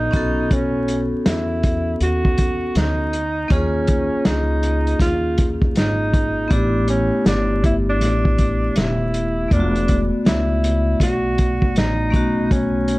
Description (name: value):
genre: hip hop, jazz-hop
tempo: 80 BPM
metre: 4/4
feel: swing 64% on 16ths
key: E dorian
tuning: A4 = 440 Hz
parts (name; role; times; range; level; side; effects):
- breathy alto saxophone; melody; 0.0-13.0 s; C#4 to F#4; -23 LUFS; right 1 dB; none
- vibraphone with hard mallets; accompaniment; 0.0-13.0 s; A3 to D5; -23 LUFS; left 1 dB; plate reverb
- upright bass; bass; 0.0-13.0 s; D#1 to E2; -23 LUFS; equal; none
- vintage drum kit; drums; 0.1-13.0 s; hi-hat, kick drum, snare drum; -20 LUFS; equal; vintage 12-bit sampler grit
room: light reverb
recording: dark, warm production, vinyl crackle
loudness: -16 LUFS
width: side -20 dB against mid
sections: 0.0-13.0 A section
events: none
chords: 0.1 B9sus4; 3.5 D#9sus4; 6.5 A9sus4; 9.5 E9sus4; 12.1 B7sus2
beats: | 0.51 1.26 2.01 2.76 | 3.51 4.26 5.01 5.76 | 6.51 7.26 8.01 8.76 | 9.51 10.26 11.01 11.76 | 12.51